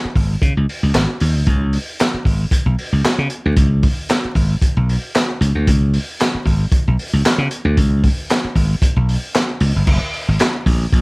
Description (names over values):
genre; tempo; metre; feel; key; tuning
funk; 114 BPM; 4/4; swing 56% on 16ths; unclear; A4 = 440 Hz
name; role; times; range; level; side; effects
slap bass; bass; 0.0-11.0 s; F#1 to C#3; -16 LUFS; equal; none
crunchy breakbeat drum kit; drums; 0.2-11.0 s; crash cymbal, handclaps, hi-hat, kick drum, snare drum; -17 LUFS; equal; none
room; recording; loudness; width
little or no reverb; vinyl crackle; -14 LUFS; side -29 dB against mid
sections
0.0-9.9 A section; 9.9-11.0 B section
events
none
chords
none